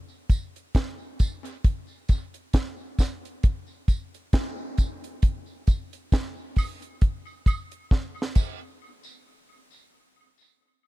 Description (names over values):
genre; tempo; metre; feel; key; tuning
reggae; 67 BPM; 4/4; swing 58% on 16ths; none; none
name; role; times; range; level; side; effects
deep reggae drum kit; drums; 0.3-8.6 s; crash cymbal, hi-hat, kick drum, snare drum; -22 LUFS; equal; none
tambourine and woodblock; percussion; 0.3-8.8 s; none; -41 LUFS; right 4 dB; high-pass filter on perc, tape echo
room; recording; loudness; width
little or no reverb; echo-heavy mix; -25 LUFS; side -19 dB against mid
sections
0.0-8.8 A section; 8.8-10.9 B section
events
filter sweep on drum 0.0-8.8; drum fill 7.9-8.8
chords
none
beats
0.75 | 1.65 2.54 3.44 4.33 | 5.23 6.13 7.02 7.92